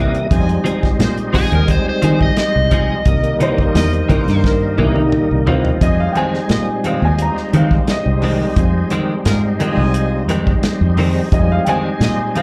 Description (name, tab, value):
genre	straight-eighth soul blues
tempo	87 BPM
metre	4/4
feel	straight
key	F minor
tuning	A4 = 438 Hz
part	dark upright piano	second line	0.0-12.4 s	C4 to Bb5	-24 LUFS	equal	plate reverb
part	tonewheel organ	accompaniment	0.0-12.4 s	C3 to D#5	-23 LUFS	equal	slow rotary speaker, overdrive, chorus vibrato, plate reverb, slapback echo
part	direct-recorded clean electric guitar	stabs	0.0-12.4 s	F2 to Ab4	-23 LUFS	equal	ensemble chorus
part	fingered electric bass	bass	0.0-12.4 s	C2 to Eb3	-19 LUFS	equal	none
part	warm soul drum kit	drums	0.1-12.4 s	hi-hat, kick drum, snare drum, toms	-21 LUFS	equal	none
part	bright horn section	sustained chords	0.3-12.4 s	D#4 to Ab5	-30 LUFS	equal	none
part	overdriven slide guitar	melody	1.4-4.4 s	Ab4 to Eb5	-24 LUFS	equal	none
room	light reverb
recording	live gig heard through the venue's PA, club reverb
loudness	-16 LUFS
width	mono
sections	0.0-5.8 A section; 5.8-12.4 B section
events	drum fill 4.4-5.8; upright piano solo 5.8-12.4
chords	0.3 Fm7; 3.1 C7#9; 5.8 Fm7